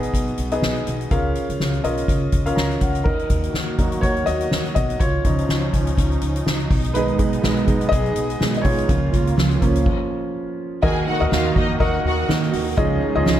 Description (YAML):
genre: piano-driven pop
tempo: 123 BPM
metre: 4/4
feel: swing 56% on 16ths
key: Eb minor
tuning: A4 = 440 Hz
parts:
  - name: warm baby grand piano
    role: accompaniment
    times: 0.0-13.4 s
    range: Cb3 to Bb5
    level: -23 LUFS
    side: left 1 dB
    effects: plate reverb
  - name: upright bass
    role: bass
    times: 0.0-13.4 s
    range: Cb2 to F2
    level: -24 LUFS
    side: equal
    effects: none
  - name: soft-mallet drum kit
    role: drums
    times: 0.0-13.4 s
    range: crash cymbal, hi-hat, kick drum, ride cymbal, snare drum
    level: -22 LUFS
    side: equal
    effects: none
  - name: warm analog pad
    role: sustained chords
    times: 3.1-13.4 s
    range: Db3 to Gb4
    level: -29 LUFS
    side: equal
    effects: chorus, plate reverb
  - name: fingerpicked steel-string acoustic guitar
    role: riff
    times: 6.9-13.4 s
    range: Cb3 to Ab4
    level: -24 LUFS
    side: right 9 dB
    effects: none
  - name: warm symphonic violin section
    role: second line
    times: 10.8-12.2 s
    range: Eb4 to Ab5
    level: -26 LUFS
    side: left 2 dB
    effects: plate reverb
room: light reverb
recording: none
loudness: -18 LUFS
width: side -11 dB against mid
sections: 0.0-3.1 A section; 3.1-10.8 B section; 10.8-13.4 C section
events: grand piano fill 2.3-3.1; grand piano solo 3.1-10.8; stop 9.9-10.8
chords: 0.0 Abm/Cb; 1.1 Bbm; 3.1 Ebm; 5.0 Dbadd9; 6.7 Abm/Cb; 8.9 Bbm/Db; 10.8 Ebm; 12.8 Dbadd9